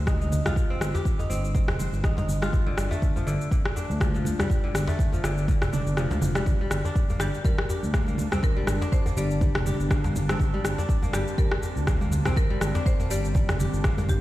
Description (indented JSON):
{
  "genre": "afro house",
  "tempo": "122 BPM",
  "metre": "4/4",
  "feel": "swing 56% on 16ths",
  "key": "G minor",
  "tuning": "A4 = 439 Hz",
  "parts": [
    { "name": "kora", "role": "arpeggios", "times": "0.0-14.2 s", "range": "D3 to C5", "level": "-33 LUFS", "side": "left 1 dB", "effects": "sidechain pumping, tape echo" },
    { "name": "smooth gliding synth bass", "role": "bass", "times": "0.0-14.2 s", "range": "F1 to G2", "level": "-27 LUFS", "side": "equal", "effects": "sidechain pumping" },
    { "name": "electronic kick drum", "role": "drums", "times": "0.1-14.2 s", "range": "none", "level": "-24 LUFS", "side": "equal", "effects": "none" },
    { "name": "electronic rim click and shaker", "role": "drums", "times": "0.1-14.2 s", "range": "none", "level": "-32 LUFS", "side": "equal", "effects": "none" },
    { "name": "congas", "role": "percussion", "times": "0.1-14.2 s", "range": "none", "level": "-33 LUFS", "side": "right 2 dB", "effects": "none" },
    { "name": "djembe", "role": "percussion", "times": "0.5-14.1 s", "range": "none", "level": "-32 LUFS", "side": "left 1 dB", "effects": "none" },
    { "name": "ethereal airy pad", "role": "sustained chords", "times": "7.3-14.2 s", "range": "G3 to A5", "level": "-36 LUFS", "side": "left 1 dB", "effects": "ensemble chorus, built-in reverb, sidechain pumping" },
    { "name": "buzzing marimba with medium hard mallets", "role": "melody", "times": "7.2-14.2 s", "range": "G4 to D5", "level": "-37 LUFS", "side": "right 1 dB", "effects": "tape echo" }
  ],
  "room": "light reverb, small room ambience",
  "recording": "played on a big sound system in a bare room, stone room reverb",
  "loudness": "-22 LUFS",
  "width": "side -16 dB against mid",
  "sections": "0.0-14.2 A section",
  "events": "kick drops out 6.0-6.5",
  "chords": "0.0 Cm; 2.5 Dm7/G; 6.5 Gm",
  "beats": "0.07 | 0.56 1.05 1.55 2.04 | 2.53 3.02 3.51 4.01 | 4.50 4.99 5.48 5.97 | 6.46 6.96 7.45 7.94 | 8.43 8.92 9.41 9.91 | 10.40 10.89 11.38 11.87 | 12.37 12.86 13.35 13.84"
}